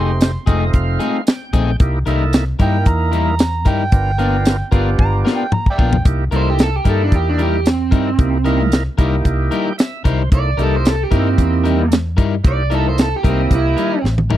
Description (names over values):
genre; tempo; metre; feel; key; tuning
straight-eighth soul blues; 113 BPM; 4/4; swing 53% on 16ths; C mixolydian; A4 = 440 Hz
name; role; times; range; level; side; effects
overdriven harmonica; second line; 0.0-6.0 s; D5 to C6; -23 LUFS; right 4 dB; none
overdriven tonewheel organ; accompaniment; 0.0-14.0 s; A3 to G5; -23 LUFS; right 3 dB; slow rotary speaker
electric guitar at the edge of break-up; stabs; 0.0-14.4 s; G3 to Bb4; -22 LUFS; left 7 dB; none
vintage muted fingered electric bass; bass; 0.0-14.4 s; F1 to G2; -18 LUFS; equal; none
tight funk drum kit; drums; 0.2-14.4 s; hi-hat, kick drum, snare drum, tambourine, toms; -14 LUFS; equal; none
overdriven semi-hollow guitar; melody; 6.4-14.0 s; C4 to D5; -20 LUFS; right 4 dB; none
room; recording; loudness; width
studio reverb; dry, close 1970s-style studio recording; -14 LUFS; side -13 dB against mid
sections
0.0-6.1 A section; 6.1-14.4 A section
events
harmonica solo 0.0-6.1; tonewheel organ fill 0.2-1.8, 9.3-10.3; drum fill 5.0-6.1, 14.0-14.4; overdriven electric guitar solo 6.1-14.4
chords
0.0 F7#9; 1.8 C7#9; 3.9 G7#9; 6.1 C7#9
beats
0.20 0.73 1.27 | 1.80 2.33 2.86 3.40 | 3.93 4.46 4.99 5.52 | 6.06 6.59 7.12 7.65 | 8.19 8.72 9.25 9.78 | 10.32 10.85 11.38 11.91 | 12.45 12.98 13.51 14.04